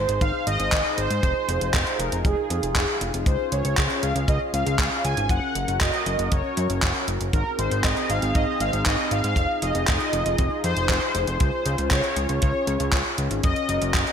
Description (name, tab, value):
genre	italo disco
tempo	118 BPM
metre	4/4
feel	straight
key	unclear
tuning	A4 = 436 Hz
part	mellow synth brass	melody	0.0-14.1 s	Ab4 to Ab5	-26 LUFS	equal	chorus, cassette tape, digital delay
part	warm analog pad	sustained chords	0.0-14.1 s	C4 to C5	-30 LUFS	left 1 dB	chorus
part	fat analog bass	bass	0.0-14.1 s	F1 to Ab2	-26 LUFS	equal	tube saturation
part	gated 80s digital drum machine	drums	0.1-14.1 s	handclaps, hi-hat	-27 LUFS	equal	gated reverb, overdrive
part	kick drum	drums	0.2-14.0 s	none	-24 LUFS	equal	none
room	moderate lush hall reverb, RT60 1.9 s, digital ambience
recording	bright 1980s-style digital production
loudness	-21 LUFS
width	side -8 dB against mid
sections	0.0-14.1 A section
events	none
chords	0.0 Ab; 1.2 Fm7; 3.3 Db; 5.3 Gb; 7.3 Ab; 9.4 Fm7; 11.4 Db; 13.4 Gb